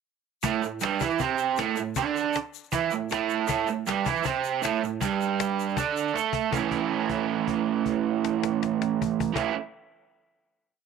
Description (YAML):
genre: garage rock duo or trio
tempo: 158 BPM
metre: 4/4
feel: straight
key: A mixolydian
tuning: A4 = 440 Hz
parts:
  - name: raw garage guitar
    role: riff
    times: 0.4-9.5 s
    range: G2 to A4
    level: -25 LUFS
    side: right 9 dB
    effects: overdrive
  - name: cajon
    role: drums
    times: 0.4-9.4 s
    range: none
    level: -32 LUFS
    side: left 6 dB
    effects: none
  - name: egg shaker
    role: percussion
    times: 0.4-6.7 s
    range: none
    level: -42 LUFS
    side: left 15 dB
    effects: none
room: small room ambience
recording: 1960s-style stereo with parts hard left and right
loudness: -24 LUFS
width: side -5 dB against mid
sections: 0.4-6.5 riff; 6.5-9.6 final chord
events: drum fill 6.1-6.5; held note 6.5-9.4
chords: 0.4 A5; 6.5 A